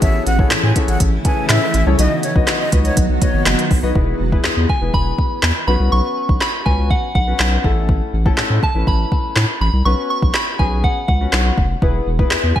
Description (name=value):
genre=dance-pop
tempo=122 BPM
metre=4/4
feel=straight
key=E major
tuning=A4 = 437 Hz
part: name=breathy mellow silver concert flute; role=melody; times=0.0-3.4 s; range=C#5 to G#5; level=-24 LUFS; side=equal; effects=sidechain pumping, ping-pong delay
part: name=warm concert grand piano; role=accompaniment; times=0.0-12.5 s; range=A3 to D#5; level=-24 LUFS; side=left 4 dB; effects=analog chorus, sidechain pumping
part: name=granular cloud pad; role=sustained chords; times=0.0-3.9 s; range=C#3 to F#4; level=-24 LUFS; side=right 1 dB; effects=built-in reverb, sidechain pumping
part: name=saturated sub bass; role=bass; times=0.0-12.5 s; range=E1 to A2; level=-17 LUFS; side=equal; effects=sidechain pumping
part: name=smooth R&B drum kit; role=drums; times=0.0-12.6 s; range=handclaps, hi-hat, kick drum, snare drum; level=-17 LUFS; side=equal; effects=gated reverb
part: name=soft synth bell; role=melody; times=4.7-12.6 s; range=F#5 to C#6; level=-22 LUFS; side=right 1 dB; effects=chorus, ping-pong delay
room=light reverb, digital ambience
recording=bright 1980s-style digital production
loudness=-14 LUFS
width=side -11 dB against mid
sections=0.0-4.0 A section; 4.0-12.6 B section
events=drop 0.0-4.0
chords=0.0 Amaj7; 2.0 B; 4.0 E; 5.7 Bsus2; 7.6 A; 9.9 Bsus2; 11.8 E